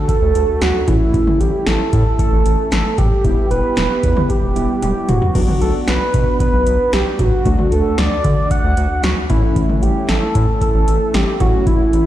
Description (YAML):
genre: synth-pop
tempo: 114 BPM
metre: 4/4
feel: straight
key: unclear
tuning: A4 = 440 Hz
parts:
  - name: soft octave-layered synth lead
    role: melody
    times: 0.0-12.1 s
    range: E4 to F#5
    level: -18 LUFS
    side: right 2 dB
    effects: chorus, slapback echo
  - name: warm analog keys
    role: accompaniment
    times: 0.0-12.1 s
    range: A3 to G4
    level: -23 LUFS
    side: left 1 dB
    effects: chorus
  - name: electro analog drum machine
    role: drums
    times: 0.1-12.1 s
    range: crash cymbal, hi-hat, kick drum, snare drum, toms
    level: -18 LUFS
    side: equal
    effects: overdrive
  - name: round analog bass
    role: bass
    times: 0.2-12.0 s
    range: E1 to D3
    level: -18 LUFS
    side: equal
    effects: none
room: light reverb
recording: played on a big sound system in a bare room, large studio reverb, lossy compression artefacts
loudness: -13 LUFS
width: side -13 dB against mid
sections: 0.0-12.1 A section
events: drum fill 4.8-5.4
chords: 0.0 D; 0.9 A; 3.2 Em; 5.4 Bm; 7.5 D; 9.3 A